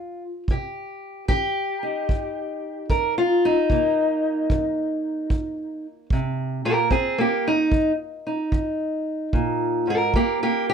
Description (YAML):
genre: acoustic country blues, solo or duo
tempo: 74 BPM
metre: 4/4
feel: swing 66% on 8ths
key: C minor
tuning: A4 = 440 Hz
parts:
  - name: fingerpicked steel-string acoustic guitar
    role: melody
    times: 0.0-10.7 s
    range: G2 to Bb4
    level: -22 LUFS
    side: equal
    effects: none
  - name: kick drum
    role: drums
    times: 0.5-10.4 s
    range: none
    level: -23 LUFS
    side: right 1 dB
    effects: none
room: moderate studio reverb, RT60 0.5 s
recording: none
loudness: -21 LUFS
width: side -7 dB against mid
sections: 0.0-10.7 A section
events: steel-string acoustic guitar solo 0.0-10.7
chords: 0.5 Cm7; 6.9 Ab5; 10.1 N.C.